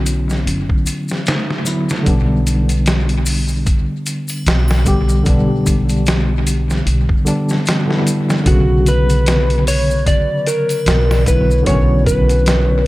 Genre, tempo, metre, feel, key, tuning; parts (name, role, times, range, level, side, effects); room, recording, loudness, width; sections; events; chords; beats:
trip hop; 75 BPM; 4/4; swing 57% on 16ths; B minor; A4 = 440 Hz
tine electric piano; accompaniment; 0.0-12.9 s; C#3 to G4; -18 LUFS; equal; tremolo, low-pass filter, tape echo
upright bass; bass; 0.0-12.9 s; F#1 to B1; -16 LUFS; equal
trip hop sampler-style drum kit; drums; 0.1-12.7 s; hi-hat, kick drum, snare drum; -18 LUFS; equal; analog delay
maracas and triangle; percussion; 0.1-12.7 s; -30 LUFS; left 3 dB; analog delay
electric slide guitar; melody; 8.5-12.9 s; F#4 to D5; -18 LUFS; equal; dub echo
little or no reverb; echo-heavy mix; -13 LUFS; side -18 dB against mid
0.0-12.9 A section
filter sweep on tine electric piano 0.0-12.9
0.0 Bmadd9; 2.1 G/B; 8.5 Bmadd9
0.46 1.26 | 2.06 2.86 3.66 4.46 | 5.26 6.06 6.86 7.66 | 8.46 9.26 10.06 10.86 | 11.66 12.46